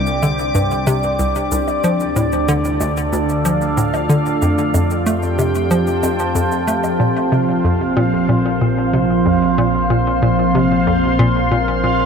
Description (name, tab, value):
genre	ambient, sequencer-driven space music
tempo	93 BPM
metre	4/4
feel	straight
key	unclear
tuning	A4 = 442 Hz
part	evolving wavetable pad	sustained chords	0.0-12.1 s	Bb2 to D5	-17 LUFS	right 1 dB	phaser, built-in reverb
part	hollow square pluck	riff	0.0-12.0 s	C2 to A3	-19 LUFS	left 1 dB	chorus, ping-pong delay
part	fat analog bass	bass	0.0-12.1 s	Bb1 to F2	-25 LUFS	equal	none
part	cabasa and woodblock	percussion	0.1-7.0 s	none	-31 LUFS	right 4 dB	ping-pong delay
part	bubbling stepped-filter texture	texture	7.2-12.1 s	F5	-26 LUFS	equal	chorus, built-in reverb
room	wet huge ambient reverb, RT60 8.8 s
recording	none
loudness	-14 LUFS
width	side -6 dB against mid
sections	0.0-7.0 A section; 7.0-12.1 B section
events	none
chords	0.0 Csus2; 1.8 Dm; 4.4 F; 7.0 Bbsus2